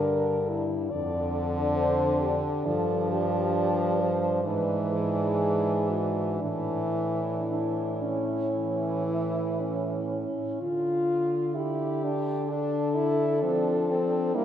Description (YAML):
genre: classical, lyrical piece for horn quartet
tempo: 56-70 BPM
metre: 4/4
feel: rubato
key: D minor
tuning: A4 = 439 Hz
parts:
  - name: mellow French horn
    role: melody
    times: 0.0-14.4 s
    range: E4 to D5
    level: -30 LUFS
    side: left 3 dB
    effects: none
  - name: mellow French horn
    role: second line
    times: 0.0-14.4 s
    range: C4 to F4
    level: -32 LUFS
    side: right 5 dB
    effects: none
  - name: clear French horn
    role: accompaniment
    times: 0.0-14.4 s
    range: D3 to E4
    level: -30 LUFS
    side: left 1 dB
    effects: none
  - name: mellow French horn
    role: bass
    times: 0.0-14.4 s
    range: F2 to G3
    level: -31 LUFS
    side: right 1 dB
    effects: none
room: wet scoring stage reverb, RT60 1.6 s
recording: heard from further back in the room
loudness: -25 LUFS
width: side -10 dB against mid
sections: 0.0-10.6 A section; 10.6-14.4 B section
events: none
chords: 0.0 Gm; 0.9 Dm/F; 2.7 G5; 4.5 E7/G#; 6.4 Asus4; 10.6 Dm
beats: 0.06 0.92 1.78 | 2.66 3.55 4.45 5.40 | 6.42 7.49 8.54 9.59 | 10.62 11.56 12.51 13.42 | 14.35